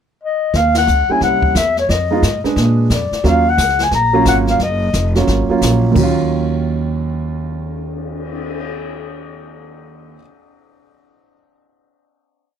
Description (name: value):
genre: jazz, small-group swing and bop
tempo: 177 BPM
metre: 4/4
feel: swing 63% on 8ths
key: Eb minor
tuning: A4 = 440 Hz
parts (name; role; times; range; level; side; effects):
- breathy clarinet; melody; 0.2-5.1 s; Db5 to Bb5; -16 LUFS; left 3 dB; none
- upright bass; bass; 0.5-10.1 s; F1 to Bb2; -18 LUFS; equal; none
- jazz brush drum kit; drums; 0.5-8.6 s; brushed snare drum, crash cymbal, cymbal swell, hi-hat, kick drum, ride cymbal, snare drum; -23 LUFS; left 1 dB; none
- warm grand piano; accompaniment; 1.1-10.2 s; Eb2 to Cb5; -17 LUFS; right 4 dB; none
room: light reverb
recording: none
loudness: -13 LUFS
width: side -8 dB against mid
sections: 0.0-0.5 pickup bar; 0.5-6.0 A section; 6.0-8.7 final chord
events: band accent 0.7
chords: 0.0 N.C.; 0.5 Ebm7; 1.2 C7b9; 1.9 Fm7b5; 2.6 Bb7b9; 3.2 Ebm9